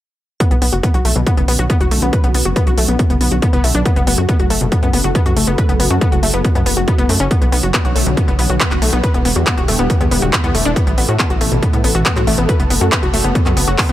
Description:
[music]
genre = uplifting trance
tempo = 139 BPM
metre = 4/4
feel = straight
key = B minor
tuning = A4 = 439 Hz
[part]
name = analog string pad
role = sustained chords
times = 0.4-13.9 s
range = B2 to A4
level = -22 LUFS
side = equal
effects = ensemble chorus, phaser, sidechain pumping
[part]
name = wide unison pluck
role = arpeggios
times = 0.4-13.9 s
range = B2 to B4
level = -20 LUFS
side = left 3 dB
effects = cassette tape, sidechain pumping, digital delay
[part]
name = electronic kick drum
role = drums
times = 0.4-13.9 s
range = none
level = -16 LUFS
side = equal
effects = none
[part]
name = techno drum kit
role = drums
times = 0.4-13.9 s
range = handclaps, hi-hat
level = -20 LUFS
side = right 1 dB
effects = none
[part]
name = tight sequencer bass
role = bass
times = 0.5-13.9 s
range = E1 to A2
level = -18 LUFS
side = equal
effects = sidechain pumping
[sound]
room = little or no reverb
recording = none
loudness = -12 LUFS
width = side -13 dB against mid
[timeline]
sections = 0.4-13.9 A section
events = filter sweep on analog synth pad 0.4-13.9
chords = 0.4 Bmadd9; 3.9 F#m; 7.3 Bmadd9; 9.0 Em7; 10.8 Asus2; 12.5 F#m

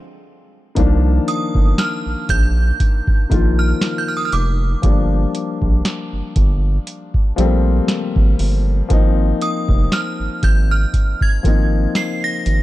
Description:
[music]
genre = contemporary R&B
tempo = 59 BPM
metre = 4/4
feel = swing 54% on 16ths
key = C minor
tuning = A4 = 440 Hz
[part]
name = warm grand piano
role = accompaniment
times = 0.8-12.6 s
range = Eb3 to F4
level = -22 LUFS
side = left 4 dB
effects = none
[part]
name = round analog bass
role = bass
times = 0.8-12.6 s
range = F1 to C2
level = -17 LUFS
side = equal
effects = none
[part]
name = booming analog drum machine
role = drums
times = 0.8-12.6 s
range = hi-hat, kick drum, snare drum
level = -16 LUFS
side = equal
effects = none
[part]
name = synth chime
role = melody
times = 1.3-12.6 s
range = D6 to C7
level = -24 LUFS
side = right 3 dB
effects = ensemble chorus, tape echo
[sound]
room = little or no reverb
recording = dark, warm production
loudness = -15 LUFS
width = side -16 dB against mid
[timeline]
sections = 0.8-12.6 A section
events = stop 0.0-0.8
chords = 0.0 N.C.; 0.8 Cm11; 4.8 Gm7; 8.9 Ab69

